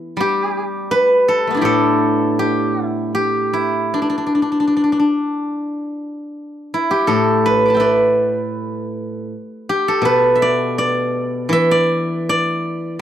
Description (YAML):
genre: chinese traditional, Chinese solo plucked strings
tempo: 72-83 BPM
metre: 4/4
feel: rubato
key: D zhi mode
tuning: A4 = 442 Hz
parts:
  - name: steel-string zither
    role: solo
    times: 0.0-13.0 s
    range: A2 to D6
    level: -15 LUFS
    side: equal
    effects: none
room: little or no reverb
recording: dry, close 1970s-style studio recording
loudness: -15 LUFS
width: side -10 dB against mid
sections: 0.0-5.6 A section; 5.6-13.0 B section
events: none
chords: none